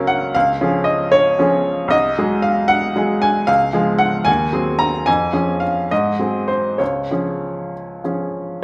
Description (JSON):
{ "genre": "classical, romantic character piece for solo piano", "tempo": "62-78 BPM (dotted quarters)", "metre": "6/8", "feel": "rubato", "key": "Db major", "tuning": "A4 = 440 Hz", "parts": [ { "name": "clear upright piano", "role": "solo", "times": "0.0-8.6 s", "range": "C2 to Bb5", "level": "-18 LUFS", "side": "equal", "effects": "none" } ], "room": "wet recital hall reverb, RT60 1.4 s", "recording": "none", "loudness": "-18 LUFS", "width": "mono", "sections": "0.0-8.6 A section", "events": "none", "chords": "0.4 Db; 1.9 Ab7/C; 3.5 Db; 4.3 Ab7/Eb; 5.1 Db/F; 5.9 Ab7; 6.8 Db", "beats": "| 0.35 1.13 | 1.93 2.70 | 3.48 4.28 | 5.07 5.91 | 6.80 7.74" }